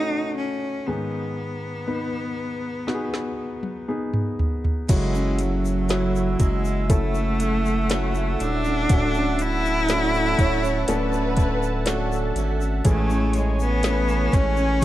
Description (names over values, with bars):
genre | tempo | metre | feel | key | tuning
pop ballad | 60 BPM | 4/4 | straight | unclear | A4 = 439 Hz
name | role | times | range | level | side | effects
clear cello | melody | 0.0-14.8 s | F#3 to E4 | -26 LUFS | equal | none
clear grand piano | accompaniment | 0.0-14.8 s | G#2 to C#5 | -28 LUFS | left 2 dB | none
smooth R&B drum kit | drums | 2.9-14.8 s | crash cymbal, hi-hat, kick drum, snare drum, toms | -22 LUFS | equal | none
warm analog pad | sustained chords | 4.9-14.8 s | C#5 to E6 | -32 LUFS | right 1 dB | chorus
picked steel-string acoustic guitar | arpeggios | 4.9-14.8 s | A2 to F#4 | -31 LUFS | right 4 dB | none
saturated sub bass | bass | 4.9-14.8 s | D1 to A1 | -25 LUFS | equal | none
tube shaker | percussion | 4.9-14.8 s | none | -43 LUFS | left 9 dB | none
warm symphonic violin section | second line | 10.4-12.6 s | A4 to C#5 | -30 LUFS | right 2 dB | none
room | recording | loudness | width
small room ambience | dark, warm production | -20 LUFS | side -14 dB against mid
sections
0.0-4.9 A section; 4.9-14.8 B section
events
drum fill 2.9-4.9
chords
0.0 F#m/A; 0.9 G#m; 4.9 F#m7; 8.9 Dmaj7; 12.9 Amaj7